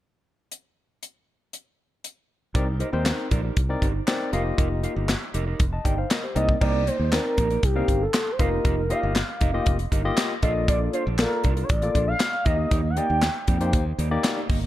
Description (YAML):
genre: early-eighties boogie funk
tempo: 118 BPM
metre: 4/4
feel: straight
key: C dorian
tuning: A4 = 440 Hz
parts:
  - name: tight funk drum kit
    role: drums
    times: 0.5-14.6 s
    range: crash cymbal, handclaps, hi-hat, kick drum, snare drum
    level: -24 LUFS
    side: equal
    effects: none
  - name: mellow electric guitar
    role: riff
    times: 2.5-14.7 s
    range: Bb3 to F5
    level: -32 LUFS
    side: right 4 dB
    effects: wide subtle chorus
  - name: modern bright fingered electric bass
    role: bass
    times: 2.5-14.7 s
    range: F1 to F2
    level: -26 LUFS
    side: equal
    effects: none
  - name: barky tine electric piano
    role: accompaniment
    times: 2.6-14.4 s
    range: Bb3 to A5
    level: -29 LUFS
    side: left 3 dB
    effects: overdrive
  - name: expressive portamento lead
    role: melody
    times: 6.4-13.7 s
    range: G4 to G5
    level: -26 LUFS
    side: equal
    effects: chorus, slapback echo
room: light reverb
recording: dark, warm production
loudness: -21 LUFS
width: side -14 dB against mid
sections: 0.5-2.5 A section; 2.5-6.6 B section; 6.6-14.7 C section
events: none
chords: 0.5 N.C.; 2.5 Cm9; 4.3 F9sus4; 6.4 Cm9; 8.4 F9sus4; 10.4 Bbmaj7; 12.5 Cm9 (rootless)